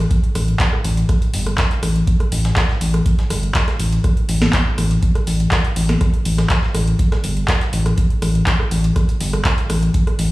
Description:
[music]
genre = acid house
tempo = 122 BPM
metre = 4/4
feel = straight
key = unclear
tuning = A4 = 440 Hz
[part]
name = round analog bass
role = bass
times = 0.0-10.3 s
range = G1 to A1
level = -17 LUFS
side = equal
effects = sidechain pumping
[part]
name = booming analog drum machine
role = drums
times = 0.1-10.3 s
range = handclaps, hi-hat, rim click, snare drum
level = -23 LUFS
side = equal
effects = none
[part]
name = breakbeat sampler-style drum kit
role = drums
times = 0.1-10.3 s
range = hi-hat, snare drum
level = -33 LUFS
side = right 1 dB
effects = sidechain pumping on hats, high-pass filter on hats, high-pass filter on snare
[part]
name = electronic kick drum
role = drums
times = 0.1-10.0 s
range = none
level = -18 LUFS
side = equal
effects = none
[sound]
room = light reverb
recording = played on a big sound system in a bare room, large studio reverb, studio reverb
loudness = -15 LUFS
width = side -18 dB against mid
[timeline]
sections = 0.0-10.3 A section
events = none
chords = none

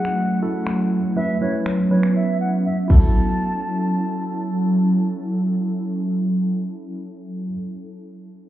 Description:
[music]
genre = dance-pop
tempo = 121 BPM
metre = 4/4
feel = straight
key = F# minor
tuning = A4 = 438 Hz
[part]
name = reedy silver concert flute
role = melody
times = 0.0-4.6 s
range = C#5 to A5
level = -28 LUFS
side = equal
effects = sidechain pumping, low-pass filter, ping-pong delay
[part]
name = tine electric piano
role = accompaniment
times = 0.0-7.5 s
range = F#3 to B4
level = -26 LUFS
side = right 2 dB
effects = medium stereo tremolo, low-pass filter
[part]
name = ethereal airy pad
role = sustained chords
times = 0.0-7.5 s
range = F#3 to A4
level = -21 LUFS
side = equal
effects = ensemble chorus, built-in reverb, sidechain pumping, low-pass filter
[part]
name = house drum kit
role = drums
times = 0.1-3.0 s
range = crash cymbal, finger snaps, kick drum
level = -15 LUFS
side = equal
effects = none
[sound]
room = moderate digital room reverb, RT60 1.3 s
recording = heard muffled through a wall, club reverb, EQ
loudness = -18 LUFS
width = side -13 dB against mid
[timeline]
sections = 0.0-3.1 A section; 3.1-7.1 B section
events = filter sweep 0.0-3.1; silent gap 2.7-3.1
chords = 0.0 F#m7; 1.2 C#m7/F#; 2.9 F#m7

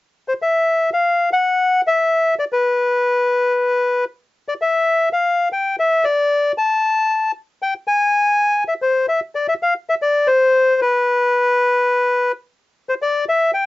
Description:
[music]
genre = tango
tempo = 114 BPM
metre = 4/4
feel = rubato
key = unclear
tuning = A4 = 439 Hz
[part]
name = bandoneon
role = solo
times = 0.3-13.7 s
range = B4 to A5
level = -15 LUFS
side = left 2 dB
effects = cassette tape
[sound]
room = moderate booth ambience, RT60 0.3 s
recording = home recording on cassette, nothing above 7.8 kHz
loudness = -15 LUFS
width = side -18 dB against mid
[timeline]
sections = 0.5-8.9 A section; 8.9-13.7 B section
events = none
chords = none

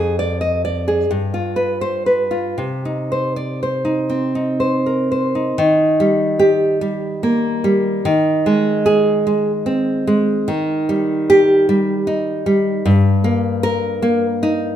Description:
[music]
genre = romantic piece for solo classical guitar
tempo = 38-53 BPM (dotted quarters)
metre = 6/8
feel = rubato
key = C minor, Eb major from 5.6 s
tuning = A4 = 441 Hz
[part]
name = nylon-string guitar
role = solo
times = 0.0-14.8 s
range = F2 to Eb5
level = -15 LUFS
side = equal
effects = none
[sound]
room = moderate recital hall reverb, RT60 1.4 s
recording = minimal, uncompressed stereo recording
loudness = -15 LUFS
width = side -10 dB against mid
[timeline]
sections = 0.0-5.6 A section; 5.6-14.8 B section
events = none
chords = 0.0 Ddim/F; 1.1 G7; 2.6 Cm; 5.6 Eb; 8.1 Ab/Eb; 10.5 Eb; 12.9 Eb/G

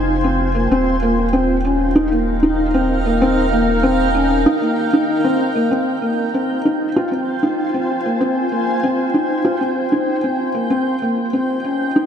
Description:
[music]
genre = piano and strings electronica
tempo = 96 BPM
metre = 4/4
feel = straight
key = F minor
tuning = A4 = 438 Hz
[part]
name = granular cloud pad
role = sustained chords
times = 0.0-12.1 s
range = Eb4 to Ab5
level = -21 LUFS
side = equal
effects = built-in reverb
[part]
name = felt-muted upright piano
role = riff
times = 0.0-12.1 s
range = Bb3 to F4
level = -17 LUFS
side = equal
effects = ping-pong delay
[part]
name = warm sub bass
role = bass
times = 0.0-4.5 s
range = Eb1 to F1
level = -22 LUFS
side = equal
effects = none
[sound]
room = moderate lush hall reverb, RT60 2.2 s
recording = dark, warm production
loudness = -15 LUFS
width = side -8 dB against mid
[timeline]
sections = 0.0-5.7 A section; 5.7-12.1 B section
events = none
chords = 0.0 Fm7; 0.7 Eb; 5.7 Fm7; 10.7 Eb7

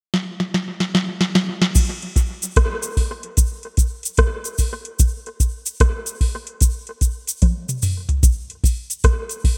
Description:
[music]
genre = reggae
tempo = 74 BPM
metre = 4/4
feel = swing 65% on 16ths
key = none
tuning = none
[part]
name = soft vintage rhythm box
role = drums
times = 0.1-9.6 s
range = crash cymbal, hi-hat, kick drum, rim click, snare drum, toms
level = -20 LUFS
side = equal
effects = overdrive
[part]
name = cabasa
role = percussion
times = 1.8-9.4 s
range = none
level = -29 LUFS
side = equal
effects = none
[sound]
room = light reverb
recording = rough home demo mix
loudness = -21 LUFS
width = mono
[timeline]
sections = 0.0-1.8 A section; 1.8-8.2 B section; 8.2-9.6 C section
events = drum fill 0.1-1.8, 7.4-8.2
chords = none

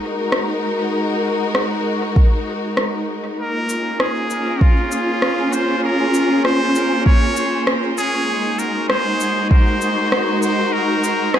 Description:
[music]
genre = ambient dub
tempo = 98 BPM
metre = 4/4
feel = swing 56% on 16ths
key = unclear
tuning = A4 = 440 Hz
[part]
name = clear symphonic string section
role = sustained chords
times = 0.0-11.4 s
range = Ab3 to Bb4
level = -19 LUFS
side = equal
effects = none
[part]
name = electronic rim click and shaker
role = drums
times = 0.3-11.4 s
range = none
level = -23 LUFS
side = equal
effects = dub echo
[part]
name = electronic kick drum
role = drums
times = 2.2-9.6 s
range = none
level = -13 LUFS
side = equal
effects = none
[part]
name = trumpet with straight mute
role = melody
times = 3.4-11.4 s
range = F4 to Db5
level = -20 LUFS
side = equal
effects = dub echo
[sound]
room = light reverb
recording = none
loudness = -16 LUFS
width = side -10 dB against mid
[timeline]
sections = 0.0-11.4 A section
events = none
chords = 0.0 Ab5; 3.4 Bbm7; 8.3 Ab7

